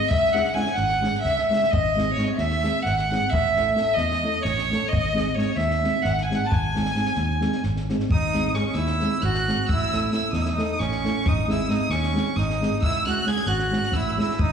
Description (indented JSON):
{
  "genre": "balkan folk, Balkan wedding band",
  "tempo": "265 BPM (eighths)",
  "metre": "7/8",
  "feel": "straight",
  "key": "G# phrygian dominant",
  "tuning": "A4 = 441 Hz",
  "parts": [
    { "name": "clear violin", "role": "melody", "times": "0.0-14.5 s", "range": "C#5 to G#6", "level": "-25 LUFS", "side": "equal", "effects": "plate reverb, slapback echo" },
    { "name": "accordion", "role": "second line", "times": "0.0-14.5 s", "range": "C#4 to A5", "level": "-29 LUFS", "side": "right 2 dB", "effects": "plate reverb, slapback echo" },
    { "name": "nylon-string guitar", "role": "accompaniment", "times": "0.0-14.3 s", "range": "G#3 to A4", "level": "-27 LUFS", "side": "equal", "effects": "plate reverb, slapback echo" },
    { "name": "fingered electric bass", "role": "bass", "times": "0.1-14.5 s", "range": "G#1 to E2", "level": "-26 LUFS", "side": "equal", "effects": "none" },
    { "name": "compact cocktail drum kit", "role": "percussion", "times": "0.1-14.5 s", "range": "kick drum, snare drum", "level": "-29 LUFS", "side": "equal", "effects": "none" }
  ],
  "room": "moderate club reverb, RT60 0.7 s",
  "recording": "live gig heard through the venue's PA, recital hall reverb",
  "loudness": "-20 LUFS",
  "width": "side -7 dB against mid",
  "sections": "0.0-8.1 A section; 8.1-14.5 A section",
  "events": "speeding up 0.0-14.5",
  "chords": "0.1 C#m; 1.7 G#; 3.3 A; 4.9 G#; 9.7 A; 11.3 G#; 12.8 C#m"
}